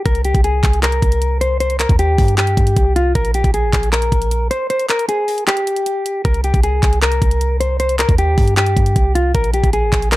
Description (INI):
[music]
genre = hip hop, trap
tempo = 155 BPM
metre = 4/4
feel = half-time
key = C minor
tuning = A4 = 440 Hz
[part]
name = mellow electric guitar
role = melody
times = 0.1-10.2 s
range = F4 to C5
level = -18 LUFS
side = left 1 dB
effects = low-pass filter, tape echo
[part]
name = clean 808-style bass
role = bass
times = 0.1-10.2 s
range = Ab1 to G2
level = -17 LUFS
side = equal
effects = none
[part]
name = trap drum kit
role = drums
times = 0.1-10.2 s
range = handclaps, hi-hat, kick drum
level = -17 LUFS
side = equal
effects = none
[sound]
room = little or no reverb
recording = dark, warm production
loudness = -13 LUFS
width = side -17 dB against mid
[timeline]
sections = 0.0-10.2 A section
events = kick muted 4.7-6.2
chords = 0.1 C7(no3); 3.2 Absus2; 4.7 N.C.; 6.2 C7(no3); 9.3 Absus2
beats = | 0.06 0.44 0.83 1.22 | 1.60 1.99 2.38 2.77 | 3.15 3.54 3.93 4.31 | 4.70 5.09 5.47 5.86 | 6.25 6.64 7.02 7.41 | 7.80 8.19 8.57 8.96 | 9.35 9.73 10.12